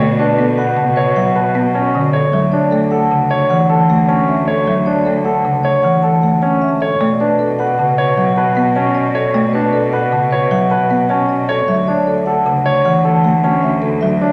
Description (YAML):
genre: classical, minimalist pattern music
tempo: 154 BPM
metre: 6/4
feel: straight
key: D major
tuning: A4 = 440 Hz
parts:
  - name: vibraphone with soft mallets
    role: melody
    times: 0.0-14.3 s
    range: A4 to A5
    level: -20 LUFS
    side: equal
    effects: none
  - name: folk marimba with medium mallets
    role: accompaniment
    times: 0.0-14.3 s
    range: C#3 to B3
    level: -20 LUFS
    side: equal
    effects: none
  - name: clear concert grand piano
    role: arpeggios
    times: 0.0-14.3 s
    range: C#4 to C#5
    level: -20 LUFS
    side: equal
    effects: none
  - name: warm cello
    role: bass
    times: 0.0-14.3 s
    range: D2 to B2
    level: -23 LUFS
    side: equal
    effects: none
room: wet recital hall reverb, RT60 1.4 s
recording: none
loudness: -15 LUFS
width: mono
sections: 0.0-14.3 A section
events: none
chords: 0.0 Bm7; 2.3 Dmaj7; 7.0 Bm7; 11.7 Dmaj7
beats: 0.38 0.77 1.16 1.55 1.94 | 2.33 2.72 3.11 3.50 3.89 4.28 | 4.67 5.06 5.45 5.84 6.23 6.62 | 7.01 7.40 7.79 8.18 8.56 8.95 | 9.34 9.73 10.12 10.51 10.90 11.29 | 11.68 12.07 12.46 12.85 13.24 13.63 | 14.02